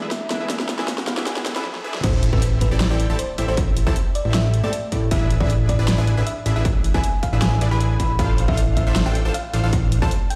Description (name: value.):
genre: future bass.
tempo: 156 BPM.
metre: 4/4.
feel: half-time.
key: A minor.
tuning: A4 = 440 Hz.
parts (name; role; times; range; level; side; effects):
felt-muted upright piano; accompaniment; 0.0-1.6 s; D3 to G#4; -38 LUFS; equal; sidechain pumping, digital delay.
supersaw stab; riff; 0.0-10.1 s; C4 to A5; -31 LUFS; equal; sidechain pumping, digital delay.
riser and sub drop; sound effects; 0.0-3.6 s; none; -33 LUFS; equal; none.
thumb-piano-like synth pluck; melody; 0.1-10.4 s; B4 to B5; -32 LUFS; equal; chorus, sidechain pumping, digital delay.
dubstep drum kit; drums; 0.1-10.4 s; crash cymbal, hi-hat, snare drum; -29 LUFS; equal; small room reverb.
fat analog bass; bass; 2.0-10.1 s; A1 to A2; -22 LUFS; equal; sidechain pumping.
electronic kick drum; drums; 2.0-10.1 s; none; -24 LUFS; equal; distortion, small room reverb.
room: digital ambience.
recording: played on a big sound system in a bare room, stone room reverb, high-pass filter.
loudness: -20 LUFS.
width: mono.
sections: 0.0-2.0 A section; 2.0-10.4 B section.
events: build-up 0.0-2.0; drum fill 0.0-1.7, 1.7-2.0; filter sweep on synth pluck 0.0-2.0; break 1.7-2.0; drop 2.0-10.4; impact 2.0-3.6.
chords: 0.0 E7; 2.0 Am7; 5.1 E7/A; 8.2 Dm7/A.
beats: 0.11 | 0.50 0.88 1.27 1.65 | 2.04 2.42 2.81 3.19 | 3.57 3.96 4.34 4.73 | 5.11 5.50 5.88 6.27 | 6.65 7.04 7.42 7.80 | 8.19 8.57 8.96 9.34 | 9.73 10.11.